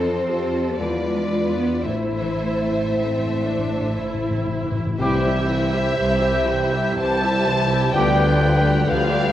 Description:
classical, slow romantic movement for symphony orchestra; 56-64 BPM; 3/4; rubato; A minor, C major from 5.0 s; A4 = 440 Hz
clear studio violin section; melody; 0.0-9.3 s; C5 to A5; -27 LUFS; left 2 dB
clear studio violin section; second line; 0.0-9.3 s; E4 to E5; -30 LUFS; left 1 dB
rich studio viola section; accompaniment; 0.0-9.3 s; E3 to G4; -29 LUFS; right 1 dB
dark French horn section; sustained chords; 0.0-8.3 s; B3 to D5; -26 LUFS; left 1 dB
concert harp; arpeggios; 0.0-9.3 s; E2 to G5; -28 LUFS; left 4 dB
clear studio cello section; bass; 0.0-9.3 s; C2 to C4; -27 LUFS; right 2 dB
clear studio double bass section; bass; 0.0-9.3 s; A1 to F2; -27 LUFS; right 3 dB
timpani; percussion; 1.9-4.9 s; A2; -29 LUFS; left 2 dB
mellow hollow small flute group; second line; 5.0-9.3 s; G6; -29 LUFS; equal
warm clarinet; second line; 5.0-9.3 s; B4 to C5; -27 LUFS; right 1 dB
mellow bassoon; accompaniment; 5.0-9.3 s; C3 to D3; -26 LUFS; right 1 dB
warm trombone section; sustained chords; 5.0-8.3 s; C3 to G3; -29 LUFS; right 2 dB
bright trumpet section; stabs; 5.0-8.3 s; G4; -26 LUFS; left 1 dB
wet scoring stage reverb, RT60 1.6 s; worn, warbling old tape, cassette tape, warbly pitch drift; -18 LUFS; side -12 dB against mid
0.0-5.0 A section; 5.0-9.3 B section
timpani fill 1.9-5.0
0.0 F; 0.8 E7b9; 1.9 Am; 5.0 C; 7.9 G7/D

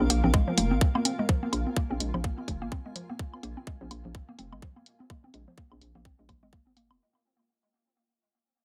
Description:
minimal techno; 126 BPM; 4/4; swing 59% on 16ths; A4 = 440 Hz
hollow knocking FM bass; bass; 0.0-7.0 s; F1 to Bb1; -32 LUFS; equal; sidechain pumping
congas and woodblock; percussion; 0.0-7.0 s; -35 LUFS; equal; small room ambience, delay
granular cloud pad; texture; 0.0-7.0 s; Bb4 to Ab5; -44 LUFS; equal; built-in reverb, sidechain pumping
pulsing gated texture; texture; 0.0-7.0 s; Bb3 to F4; -46 LUFS; equal
mallet-like synth pluck; riff; 0.1-6.8 s; F3 to C4; -36 LUFS; equal; chorus, sidechain pumping, dub echo
electronic hi-hat; drums; 0.1-6.9 s; -32 LUFS; equal; overdrive, low-pass filter on hats, small room ambience
electronic kick drum; drums; 0.3-6.6 s; -30 LUFS; equal; overdrive, small room ambience
light reverb; heavily compressed radio sound; -28 LUFS; mono
0.0-7.0 A section
fade-out on ambient pad 0.0-7.0; fade-out 0.0-7.0; filter sweep on synth arpeggio sound 0.0-7.0
0.0 Bb7(no3)

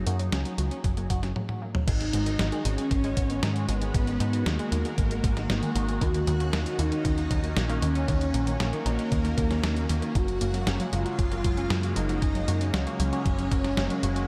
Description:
synthwave; 116 BPM; 4/4; straight; A4 = 436 Hz
phased analog pad; sustained chords; 0.0-14.3 s; C#3 to G#4; -37 LUFS; equal; phaser, chorus, sidechain pumping
semi-hollow electric guitar; riff; 0.0-14.3 s; D#3 to G#4; -42 LUFS; equal
overdriven picked electric bass; bass; 0.0-14.3 s; F#1 to G#2; -30 LUFS; equal
unison pluck; arpeggios; 0.1-14.2 s; D#3 to F#4; -40 LUFS; equal
detuned 8-bit digital drum machine; drums; 0.1-14.3 s; crash cymbal, hi-hat, snare drum, toms; -36 LUFS; equal; studio reverb
electronic kick drum; drums; 0.8-13.6 s; -30 LUFS; equal; studio reverb
warm velvety synth lead; melody; 1.9-14.3 s; A#3 to F#4; -34 LUFS; equal; chorus, delay
string machine, violins; second line; 1.9-14.3 s; A#3 to F#4; -41 LUFS; equal; ensemble chorus, delay
moderate cathedral reverb, RT60 6.1 s; dreamy mix soaked in reverb; -27 LUFS; mono
0.0-1.9 A section; 1.9-14.3 B section
drum fill 1.4-1.9
0.0 F#add9; 1.9 G#m7; 6.0 D#m7; 10.2 F#add9

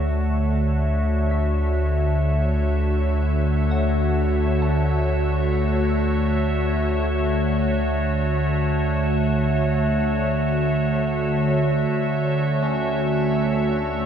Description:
ambient; free time; D major; A4 = 438 Hz
evolving wavetable pad; sustained chords; 0.0-14.1 s; D3 to E5; -21 LUFS; right 1 dB; chorus, built-in reverb, shimmer reverb
clean electric guitar; arpeggios; 0.0-14.1 s; A3 to A5; -37 LUFS; equal
warm sub bass; bass; 0.0-14.1 s; D2; -24 LUFS; left 1 dB
wet cathedral reverb, RT60 7.3 s; cassette tape; -19 LUFS; side -8 dB against mid
0.0-14.1 A section
0.0 Dmaj7

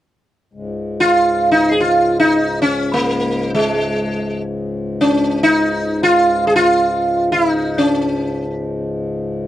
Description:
indian classical; free time; Db raga bhupali; A4 = 440 Hz
pedal harmonium; drone; 0.5-9.5 s; Db2 to Ab2; -23 LUFS; left 2 dB
sitar; melody; 1.0-9.3 s; Ab3 to Ab4; -14 LUFS; equal
light reverb; dry, close 1970s-style studio recording; -14 LUFS; side -13 dB against mid
0.5-9.5 A section

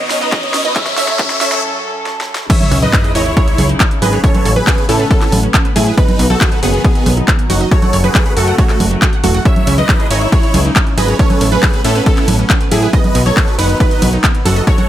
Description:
uplifting trance; 138 BPM; 4/4; straight; C# minor; A4 = 440 Hz
dense compressed supersaw; melody; 0.0-14.9 s; A3 to E5; -18 LUFS; right 1 dB; sidechain pumping, dub echo
analog pluck; second line; 0.0-14.9 s; F#4 to E5; -24 LUFS; right 2 dB; chorus, vintage 12-bit sampler grit, sidechain pumping, dub echo
dark chamber string section; sustained chords; 0.0-14.9 s; F#2 to B4; -24 LUFS; left 2 dB; sidechain pumping
big-room dance drum kit; drums; 0.0-14.9 s; congas, crash cymbal, handclaps, hi-hat, ride cymbal, snare drum; -17 LUFS; right 1 dB; overdrive, high-pass filter on snare, sidechain pumping on hats, high-pass filter on hats, sidechain pumping on perc, high-pass filter on perc, sidechain pumping on cymbals, high-pass filter on cymbals
riser and sub drop; sound effects; 0.0-4.2 s; -20 LUFS; left 2 dB
wide unison pluck; arpeggios; 0.1-14.8 s; B3 to F#5; -24 LUFS; right 4 dB; lush chorus, sidechain pumping, dub echo
electronic kick drum; drums; 0.3-14.8 s; -13 LUFS; equal; overdrive
plucky analog bass; bass; 2.7-14.6 s; E1 to A2; -15 LUFS; equal; sidechain pumping
light reverb; high-pass filter; -10 LUFS; side -12 dB against mid
0.0-2.5 A section; 2.5-14.9 B section
build-up 0.0-2.5; drum fill 0.0-1.6, 2.1-2.5; riser 0.0-1.6; break 1.6-2.5; drop 2.5-14.9; impact 2.5-4.2
0.0 B; 0.8 F#m; 2.5 C#madd9; 4.2 Aadd9; 6.0 B; 7.7 F#m; 9.5 C#madd9; 11.2 Aadd9; 12.9 B

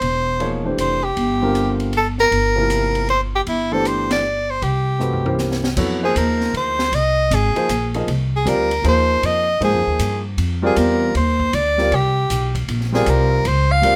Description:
modal jazz; 156 BPM; 3/4; swing 65% on 8ths; G dorian, F dorian from 5.8 s; A4 = 440 Hz
breathy soprano saxophone; melody; 0.0-14.0 s; E4 to F5; -21 LUFS; equal
upright bass; bass; 0.0-14.0 s; E1 to Ab2; -23 LUFS; equal
open jazz drum kit; drums; 0.0-13.9 s; crash cymbal, hi-hat, kick drum, ride cymbal, snare drum, toms; -32 LUFS; equal
warm concert grand piano; accompaniment; 0.4-14.0 s; C3 to Eb5; -24 LUFS; equal
light reverb; -19 LUFS; mono
0.0-5.8 A section; 5.8-14.0 B section
band accent 4.0; drum fill 5.0-5.8
0.0 Am; 1.2 Gm7; 3.5 Am/G; 4.6 C7b9; 5.8 Fm9; 10.4 Bbadd9

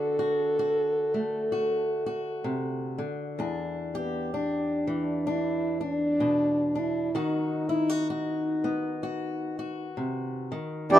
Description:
acoustic folk duo or small band; 64 BPM; 4/4; swing 58% on 8ths; A4 = 440 Hz
dark French horn; melody; 0.0-10.0 s; B3 to A4; -27 LUFS; right 1 dB
fingerpicked steel-string acoustic guitar; accompaniment; 0.0-11.0 s; E2 to G4; -31 LUFS; left 2 dB
pedal harmonium; sustained chords; 10.9-11.0 s; E3 to G4; -13 LUFS; right 2 dB
little or no reverb; minimal, uncompressed stereo recording; -26 LUFS; side -12 dB against mid
0.0-10.9 A section
0.0 D7; 3.4 Em7; 7.1 B/D#

